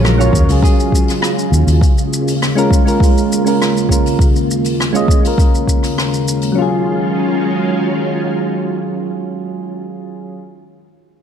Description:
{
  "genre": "sunset chillout",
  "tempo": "101 BPM",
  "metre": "4/4",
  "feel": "straight",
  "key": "Eb minor",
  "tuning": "A4 = 440 Hz",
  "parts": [
    { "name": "nylon-string guitar", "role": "melody", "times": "0.0-1.2 s", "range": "Ab4 to Bb4", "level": "-24 LUFS", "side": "equal", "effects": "ping-pong delay" },
    { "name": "soft string machine", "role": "sustained chords", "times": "0.0-9.7 s", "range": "Eb2 to F4", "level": "-18 LUFS", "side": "equal", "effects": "ensemble chorus" },
    { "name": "fingered electric bass", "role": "bass", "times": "0.0-1.8 s", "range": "Bb1 to Eb2", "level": "-12 LUFS", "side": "equal", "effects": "none" },
    { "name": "jazz brush drum kit", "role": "drums", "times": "0.0-6.5 s", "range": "hi-hat, rim click, shaker", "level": "-23 LUFS", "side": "left 1 dB", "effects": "none" },
    { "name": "soft electric-piano-like synth keys", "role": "accompaniment", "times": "0.2-10.4 s", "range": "Gb3 to Eb5", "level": "-18 LUFS", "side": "moving between left 5 dB and right 7 dB", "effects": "chorus, auto-pan, low-pass filter, ping-pong delay" },
    { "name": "electronic kick drum", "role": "drums", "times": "0.3-5.8 s", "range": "none", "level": "-12 LUFS", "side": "equal", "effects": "overdrive" }
  ],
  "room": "moderate lush hall reverb, RT60 1.6 s",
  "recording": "dark, warm production",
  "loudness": "-12 LUFS",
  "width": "side -8 dB against mid",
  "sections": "0.0-6.6 A section; 6.6-8.9 B section",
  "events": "filter sweep on synth keys 0.0-6.6; filter sweep on string machine 0.0-6.6",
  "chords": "0.0 Ebm11; 1.8 Bbm7/Eb; 6.6 Ebm11",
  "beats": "0.03 0.63 1.22 | 1.81 2.41 3.00 3.60 | 4.19 4.78 5.38 5.97 | 6.57 7.16 7.75 8.35"
}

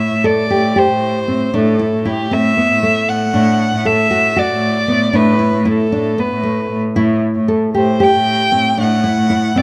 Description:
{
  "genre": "contemporary instrumental, chamber music in an uneven meter",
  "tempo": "232 BPM (eighths)",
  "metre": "7/8",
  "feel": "straight",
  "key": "A dorian",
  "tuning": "A4 = 440 Hz",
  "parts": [
    { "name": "dark violin", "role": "melody", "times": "0.0-9.6 s", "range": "G4 to G5", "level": "-19 LUFS", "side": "equal", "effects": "none" },
    { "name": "nylon-string guitar", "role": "arpeggios", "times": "0.0-9.6 s", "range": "A3 to A4", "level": "-20 LUFS", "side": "equal", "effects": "none" },
    { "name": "warm cello", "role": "bass", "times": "0.1-9.6 s", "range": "A2", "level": "-19 LUFS", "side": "equal", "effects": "none" }
  ],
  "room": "light reverb",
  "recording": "close, detailed microphones",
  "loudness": "-15 LUFS",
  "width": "mono",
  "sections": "0.0-9.6 A section",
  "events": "none",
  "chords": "0.0 Am7; 3.3 Bm7/A; 7.0 A7(no3)",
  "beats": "0.24 0.50 0.76 1.02 1.28 | 1.54 1.80 2.06 2.31 2.57 2.82 3.08 | 3.33 3.59 3.85 4.11 4.36 4.62 4.88 | 5.14 5.39 5.65 5.91 6.17 6.44 6.70 | 6.96 7.22 7.48 7.75 8.01 8.27 8.53 | 8.78 9.04 9.30 9.56"
}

